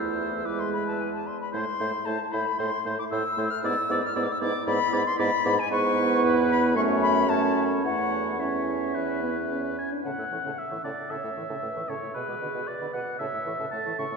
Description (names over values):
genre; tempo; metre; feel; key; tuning
quick classical-period movement for wind quintet; 114 BPM; 4/4; rubato; A major from 5.7 s; A4 = 439 Hz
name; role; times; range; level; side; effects
silver concert flute; melody; 0.0-14.2 s; E5 to F6; -29 LUFS; left 4 dB; none
warm oboe; second line; 0.0-14.2 s; B4 to C#6; -32 LUFS; left 1 dB; none
mellow French horn; accompaniment; 0.0-14.2 s; B2 to D4; -31 LUFS; right 2 dB; none
mellow clarinet; accompaniment; 0.0-14.2 s; C#4 to C#5; -33 LUFS; right 5 dB; none
mellow bassoon; bass; 0.0-14.2 s; E2 to B2; -31 LUFS; right 2 dB; none
room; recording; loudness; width
wet cathedral reverb, RT60 4.3 s; recorded in a church or concert hall; -24 LUFS; side -4 dB against mid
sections
0.0-10.1 A section; 10.1-14.2 B section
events
none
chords
0.5 E; 1.5 Am; 3.6 E7/G#; 5.7 E/G#; 6.8 F#m; 7.8 A/E; 8.9 E5; 10.1 A; 12.2 G#dim/B; 13.2 A